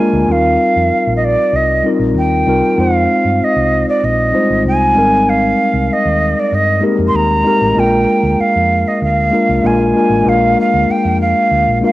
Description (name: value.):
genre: lush 1970s-style soul.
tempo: 96 BPM.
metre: 4/4.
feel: straight.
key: unclear.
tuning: A4 = 439 Hz.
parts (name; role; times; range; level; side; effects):
jazz flute; melody; 0.0-11.9 s; D5 to C6; -14 LUFS; right 1 dB; none.
mellow tine electric piano; accompaniment; 0.0-11.9 s; G3 to C5; -14 LUFS; left 2 dB; wide subtle chorus, cassette tape.
hollow-body short-scale fingered electric bass; bass; 0.1-11.8 s; Ab1 to G2; -19 LUFS; equal; none.
room: moderate spring reverb, RT60 2.4 s.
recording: home recording on cassette.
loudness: -11 LUFS.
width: side -16 dB against mid.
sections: 0.0-11.9 A section.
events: none.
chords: 0.3 Eb69; 2.8 Fm7; 5.0 Abmaj9; 7.8 Bb7.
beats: | 0.28 0.90 1.52 2.15 | 2.77 3.40 4.02 4.65 | 5.27 5.89 6.52 7.14 | 7.76 8.39 9.01 9.63 | 10.26 10.88 11.50.